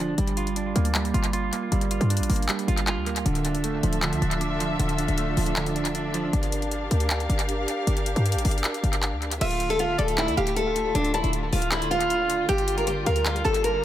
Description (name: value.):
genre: hip hop, trap.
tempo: 156 BPM.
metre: 4/4.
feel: half-time.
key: D minor.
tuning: A4 = 440 Hz.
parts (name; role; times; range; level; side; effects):
semi-hollow electric guitar; accompaniment; 0.0-6.3 s; D3 to F4; -27 LUFS; right 4 dB; phaser, tape echo.
short 808-style bass; bass; 0.0-13.8 s; D1 to G2; -26 LUFS; equal; none.
trap drum kit; drums; 0.2-13.7 s; crash cymbal, handclaps, hi-hat; -31 LUFS; left 1 dB; tape echo.
dark studio string section; sustained chords; 3.3-13.8 s; D3 to F5; -30 LUFS; left 1 dB; none.
picked steel-string acoustic guitar; melody; 9.4-13.8 s; D4 to Bb4; -24 LUFS; equal; tape echo.
string-like resonator pluck; second line; 9.4-13.6 s; D5 to A5; -34 LUFS; right 1 dB; chorus, tape echo.
room: digital ambience.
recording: echo-heavy mix.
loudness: -22 LUFS.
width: side -12 dB against mid.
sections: 0.0-9.4 A section; 9.4-13.8 B section.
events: none.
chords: 0.2 Gm7; 3.3 Dmadd9; 6.3 Gm7; 9.4 Dmadd9; 12.5 Gm7.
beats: | 0.18 0.56 0.95 1.33 | 1.72 2.10 2.49 2.87 | 3.26 3.64 4.03 4.41 | 4.79 5.18 5.56 5.95 | 6.33 6.72 7.10 7.49 | 7.87 8.26 8.64 9.03 | 9.41 9.79 10.18 10.56 | 10.95 11.33 11.72 12.10 | 12.49 12.87 13.26 13.64.